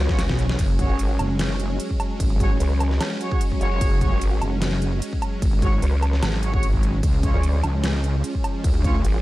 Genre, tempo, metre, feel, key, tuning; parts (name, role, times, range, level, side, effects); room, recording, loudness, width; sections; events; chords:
heavy wobble dubstep; 149 BPM; 4/4; swing 54% on 16ths, half-time; A4 = 438 Hz
supersaw chords; sustained chords; 0.0-9.2 s; E#3 to C#4; -29 LUFS; right 1 dB; sidechain pumping
vowel-sweep wobble bass; bass; 0.0-9.2 s; F#1 to D2; -20 LUFS; equal; chorus, overdrive
swell; sound effects; 0.0-0.6 s; -34 LUFS; left 5 dB
mellow brass ensemble; stabs; 0.1-9.0 s; E#4 to C#5; -31 LUFS; right 1 dB; tape echo
wobble bass; bass; 0.1-9.0 s; F#1 to D2; -23 LUFS; equal; chorus, overdrive
dubstep drum kit; drums; 0.1-9.1 s; crash cymbal, hi-hat, snare drum, woodblock; -31 LUFS; equal
electronic kick drum; drums; 0.1-8.9 s; -22 LUFS; equal
little or no reverb; dark, warm production; -19 LUFS; side -17 dB against mid
0.0-9.2 A section
drum fill 0.0-0.6; swell 0.0-0.6
0.0 C#; 0.6 F#sus2; 7.0 C#